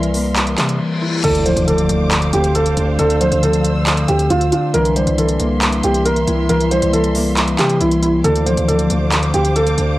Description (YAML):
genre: hip hop, trap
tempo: 137 BPM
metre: 4/4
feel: half-time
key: D minor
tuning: A4 = 444 Hz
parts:
  - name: concert harp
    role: accompaniment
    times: 0.0-10.0 s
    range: D3 to E4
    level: -18 LUFS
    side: left 2 dB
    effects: low-pass filter
  - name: warm symphonic string section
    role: sustained chords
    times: 0.0-10.0 s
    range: Bb3 to E6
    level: -27 LUFS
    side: right 1 dB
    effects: none
  - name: distorted 808-style bass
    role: bass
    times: 0.0-10.0 s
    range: C2 to C3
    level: -20 LUFS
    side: right 1 dB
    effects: distortion
  - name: trap drum kit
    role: drums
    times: 0.0-9.9 s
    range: crash cymbal, handclaps, hi-hat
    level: -20 LUFS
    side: right 1 dB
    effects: none
  - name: reverse cymbal and impact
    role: sound effects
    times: 0.7-3.0 s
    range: none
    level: -28 LUFS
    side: equal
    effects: none
  - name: felt-muted upright piano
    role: melody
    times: 1.2-10.0 s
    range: E4 to C5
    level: -18 LUFS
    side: right 2 dB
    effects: low-pass filter
room: small room ambience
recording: dry, gritty hardware recording, cassette tape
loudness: -13 LUFS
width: side -16 dB against mid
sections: 0.0-1.2 A section; 1.2-10.0 B section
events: break 0.0-1.2; reverse cymbal 0.7-1.2; impact 1.2-3.0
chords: 0.0 C7; 1.2 Dm7; 4.7 C7; 8.2 Dm7